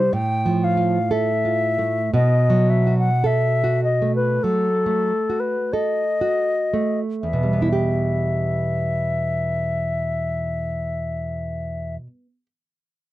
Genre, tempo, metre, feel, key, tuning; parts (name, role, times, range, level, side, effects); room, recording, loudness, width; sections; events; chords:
romantic duo for flute and classical guitar; 38-63 BPM; 4/4; rubato; E minor; A4 = 439 Hz
concert flute; melody; 0.0-12.0 s; A4 to G5; -22 LUFS; left 3 dB
nylon-string guitar; accompaniment; 0.0-12.5 s; E2 to A4; -21 LUFS; right 2 dB
moderate booth ambience, RT60 0.2 s; dry, close 1970s-style studio recording; -19 LUFS; side -15 dB against mid
0.0-7.2 A section; 7.2-13.0 B section
slowing down 0.0-7.2
0.1 F/A; 2.1 B7; 7.2 Em